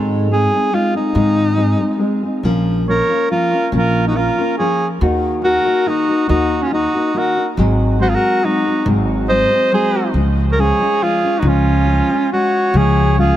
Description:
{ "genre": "mexican folk, mariachi", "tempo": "140 BPM", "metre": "3/4", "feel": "straight", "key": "Db major", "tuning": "A4 = 438 Hz", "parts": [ { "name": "nylon-string guitar", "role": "accompaniment", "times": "0.0-13.4 s", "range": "Ab2 to Ab4", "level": "-18 LUFS", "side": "left 1 dB", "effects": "none" }, { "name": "upright bass", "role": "bass", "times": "0.0-13.3 s", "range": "Ab1 to Ab2", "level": "-17 LUFS", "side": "equal", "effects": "none" }, { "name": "warm alto saxophone", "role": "melody", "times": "0.3-13.4 s", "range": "Db4 to C5", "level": "-17 LUFS", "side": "equal", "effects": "none" }, { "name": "clear trumpet", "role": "second line", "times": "2.9-13.4 s", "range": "F4 to Eb5", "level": "-23 LUFS", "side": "right 4 dB", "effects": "none" } ], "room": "light reverb", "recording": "none", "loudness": "-13 LUFS", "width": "side -12 dB against mid", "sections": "0.0-12.8 A section", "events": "none", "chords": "0.0 Ab; 2.4 Bbm; 5.0 Ebm; 7.6 Ab7; 10.2 Db" }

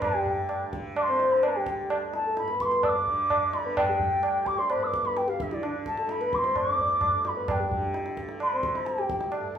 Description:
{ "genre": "indian classical, Hindustani", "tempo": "129 BPM", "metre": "4/4", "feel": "straight", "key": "D raga bageshri", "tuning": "A4 = 440 Hz", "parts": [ { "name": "mellow bansuri", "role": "melody", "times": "0.0-9.6 s", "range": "D5 to E6", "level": "-27 LUFS", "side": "equal", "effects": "none" }, { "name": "hollow clarinet-like synth lead", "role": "second line", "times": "0.0-9.4 s", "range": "D4 to D5", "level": "-30 LUFS", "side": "left 2 dB", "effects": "chorus" }, { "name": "tanpura", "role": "drone", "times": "0.0-9.6 s", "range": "D2 to D3", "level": "-38 LUFS", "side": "equal", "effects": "none" }, { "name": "tabla", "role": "percussion", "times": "0.0-9.6 s", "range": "none", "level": "-31 LUFS", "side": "right 2 dB", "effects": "none" } ], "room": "wet large studio reverb, RT60 0.9 s", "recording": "band playing live in one room", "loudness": "-24 LUFS", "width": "side -9 dB against mid", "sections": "0.0-9.6 A section", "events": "none", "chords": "none" }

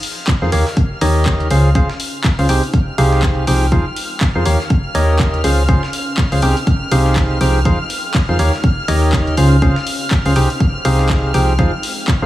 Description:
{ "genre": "piano house", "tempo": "122 BPM", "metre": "4/4", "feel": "swing 58% on 16ths", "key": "unclear", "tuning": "A4 = 440 Hz", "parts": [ { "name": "dark studio violin section", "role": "sustained chords", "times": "0.0-12.3 s", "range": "F6", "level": "-27 LUFS", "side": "right 1 dB", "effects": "sidechain pumping" }, { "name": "dusty soul sampler-style drum kit", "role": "drums", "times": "0.0-12.2 s", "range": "hi-hat, snare drum", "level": "-31 LUFS", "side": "equal", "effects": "none" }, { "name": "house drum kit", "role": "drums", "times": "0.0-12.2 s", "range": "handclaps, hi-hat", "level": "-24 LUFS", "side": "left 1 dB", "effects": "overdrive" }, { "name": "warbly tape-like pad", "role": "texture", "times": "0.0-12.3 s", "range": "Ab3 to G5", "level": "-33 LUFS", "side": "equal", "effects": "none" }, { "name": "electronic kick drum", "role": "drums", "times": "0.3-12.2 s", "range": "none", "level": "-16 LUFS", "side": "equal", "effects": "overdrive" }, { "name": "percussive organ stab", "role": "riff", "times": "0.4-12.3 s", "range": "C3 to G5", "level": "-18 LUFS", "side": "equal", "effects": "chorus, sidechain pumping, digital delay" }, { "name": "solid FM bass", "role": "bass", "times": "0.4-12.3 s", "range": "C2 to F2", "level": "-15 LUFS", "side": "equal", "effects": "sidechain pumping" } ], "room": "light reverb", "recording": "heavily compressed radio sound, small room ambience", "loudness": "-13 LUFS", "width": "side -14 dB against mid", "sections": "0.0-12.3 A section", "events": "none", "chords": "0.0 Fm7; 0.5 Eb9; 1.5 Dbmaj7; 2.5 Abmaj7/C; 3.7 Fm7; 4.5 Eb9; 5.4 Dbmaj7; 6.4 Abmaj7/C; 7.7 Fm7; 8.4 Eb9; 9.4 Dbmaj7; 10.4 Abmaj7/C; 11.6 Fm7" }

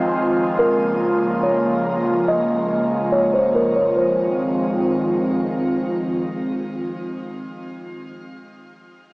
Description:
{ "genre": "hip hop", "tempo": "142 BPM", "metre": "4/4", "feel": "half-time", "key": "Ab major", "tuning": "A4 = 442 Hz", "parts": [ { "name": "buzzing kalimba", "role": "melody", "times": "0.0-5.2 s", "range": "Bb4 to Eb5", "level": "-20 LUFS", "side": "equal", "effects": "low-pass filter, tape echo" }, { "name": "airy breathy pad", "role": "sustained chords", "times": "0.0-8.1 s", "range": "Db3 to F4", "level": "-20 LUFS", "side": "equal", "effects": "chorus, low-pass filter" } ], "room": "light reverb, small room ambience", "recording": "dry, gritty hardware recording, transformer saturation, cassette tape, small speaker sound", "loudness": "-17 LUFS", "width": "side -28 dB against mid", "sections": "0.0-4.0 A section; 4.0-7.3 B section", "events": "filter sweep 0.0-4.0", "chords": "0.0 Ab6; 0.6 Db6; 4.0 Ab6" }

